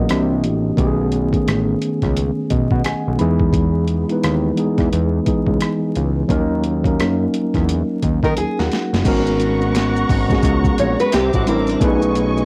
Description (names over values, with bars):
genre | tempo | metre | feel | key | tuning
R&B, neo-soul | 87 BPM | 4/4 | swing 62% on 16ths | G# minor | A4 = 440 Hz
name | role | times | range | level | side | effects
mellow tine electric piano | accompaniment | 0.0-12.4 s | D#3 to B5 | -21 LUFS | equal | cassette tape
fat analog bass | bass | 0.0-12.4 s | F#1 to D#3 | -23 LUFS | equal | none
boom bap sampler-style drum kit | drums | 0.1-12.4 s | crash cymbal, hi-hat, kick drum, rim click, snare drum | -23 LUFS | equal | overdrive
nylon-string guitar | second line | 8.2-12.0 s | D4 to C#5 | -24 LUFS | equal | cassette tape
maracas and finger snaps | percussion | 9.0-12.4 s | none | -39 LUFS | equal | none
dark studio string section | sustained chords | 9.1-12.4 s | A3 to D6 | -27 LUFS | equal | cassette tape
room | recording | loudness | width
light reverb | home recording on cassette, vinyl crackle | -18 LUFS | mono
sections
0.0-9.0 A section; 9.0-12.4 B section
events
tine electric piano fill 2.2-3.5; drum fill 8.4-9.0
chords
0.1 C9; 0.8 B13; 3.2 Emaj7; 6.3 D#m7; 9.0 G#m11; 11.1 C9; 11.8 B13